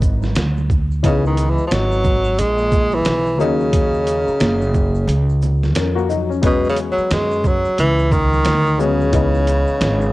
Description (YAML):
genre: hip hop, jazz-hop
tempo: 89 BPM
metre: 4/4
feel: swing 61% on 16ths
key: C# dorian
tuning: A4 = 440 Hz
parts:
  - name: warm upright piano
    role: accompaniment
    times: 0.0-10.1 s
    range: E3 to A#4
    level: -22 LUFS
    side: left 6 dB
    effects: cassette tape
  - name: upright bass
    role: bass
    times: 0.0-10.1 s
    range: F#1 to F#2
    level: -19 LUFS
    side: right 1 dB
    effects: tube saturation
  - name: trip hop sampler-style drum kit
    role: drums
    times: 0.0-10.0 s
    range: hi-hat, kick drum, shaker, snare drum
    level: -20 LUFS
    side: right 1 dB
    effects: none
  - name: maracas and congas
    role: percussion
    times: 0.0-10.1 s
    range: none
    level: -33 LUFS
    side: right 8 dB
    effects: none
  - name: mellow tenor saxophone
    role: melody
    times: 1.0-10.1 s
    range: B2 to G#3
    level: -18 LUFS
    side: equal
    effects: none
room: studio reverb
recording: home recording on cassette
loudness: -14 LUFS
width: side -18 dB against mid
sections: 0.0-1.0 A section; 1.0-10.1 B section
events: upright piano solo 0.0-1.0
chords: 0.0 C#m7 (rootless); 1.0 C#m9; 3.4 F#6; 6.4 E69; 9.1 C#m7